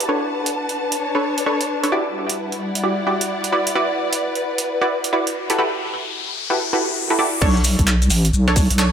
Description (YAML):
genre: UK garage, two-step garage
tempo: 131 BPM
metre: 4/4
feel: swing 63% on 16ths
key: B minor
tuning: A4 = 441 Hz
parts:
  - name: breakbeat sampler-style drum kit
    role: drums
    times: 0.0-8.9 s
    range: crash cymbal, handclaps, hi-hat, rim click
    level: -23 LUFS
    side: right 2 dB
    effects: none
  - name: dark symphonic string section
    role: texture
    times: 0.0-5.6 s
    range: G3 to A5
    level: -23 LUFS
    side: left 1 dB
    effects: sidechain pumping
  - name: punchy chord stab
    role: stabs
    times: 0.1-8.9 s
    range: D4 to D5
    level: -21 LUFS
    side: right 1 dB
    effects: chorus, analog delay
  - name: riser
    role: sound effects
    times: 4.8-7.4 s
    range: none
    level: -27 LUFS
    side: left 5 dB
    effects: none
  - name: deep soft wobble bass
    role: bass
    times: 7.4-8.9 s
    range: A1 to B1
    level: -16 LUFS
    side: equal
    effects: chorus
  - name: electronic kick drum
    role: drums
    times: 7.4-8.7 s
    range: none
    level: -18 LUFS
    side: equal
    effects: none
  - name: maracas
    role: percussion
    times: 7.4-8.9 s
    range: none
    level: -27 LUFS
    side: left 6 dB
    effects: none
room: wet plate reverb, RT60 1.7 s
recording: dreamy mix soaked in reverb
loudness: -17 LUFS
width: side -8 dB against mid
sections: 0.0-7.4 A section; 7.4-8.9 B section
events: riser 4.8-7.4; drop 7.4-8.9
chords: 0.1 Bm9; 1.9 Em9; 3.5 D69; 5.4 Gmaj13; 7.4 Bm9